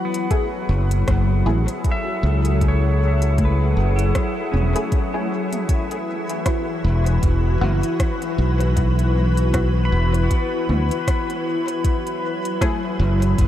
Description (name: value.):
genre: ambient dub.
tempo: 78 BPM.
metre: 4/4.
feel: swing 57% on 16ths.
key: unclear.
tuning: A4 = 445 Hz.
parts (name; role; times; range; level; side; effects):
soft additive organ-like pad; sustained chords; 0.0-13.5 s; E3 to B5; -24 LUFS; left 2 dB; ensemble chorus, built-in reverb.
bubbling stepped-filter texture; texture; 0.0-5.7 s; F#4 to F#5; -36 LUFS; right 1 dB; none.
pedal steel guitar; arpeggios; 0.1-12.3 s; B3 to B5; -31 LUFS; equal; wide subtle chorus, dub echo.
organic electronic drum kit; drums; 0.1-13.5 s; hi-hat, rim click, toms; -33 LUFS; equal; overdrive, small room reverb, dub echo.
filtered dub chord stab; stabs; 0.3-12.8 s; A3 to G#4; -31 LUFS; equal; phaser, dub echo.
electronic kick drum; drums; 0.3-13.5 s; none; -21 LUFS; equal; overdrive, small room reverb.
modern bright fingered electric bass; bass; 0.7-13.5 s; E1 to D2; -18 LUFS; equal; tube saturation.
room: light reverb.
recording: none.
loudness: -18 LUFS.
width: side -12 dB against mid.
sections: 0.0-5.7 A section; 5.7-13.5 B section.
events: none.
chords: 0.0 F#m7; 5.7 Esus2; 11.8 F#m7.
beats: 0.31 1.07 1.84 | 2.61 3.38 4.15 4.92 | 5.69 6.46 7.23 8.00 | 8.77 9.54 10.31 11.07 | 11.84 12.61 13.38.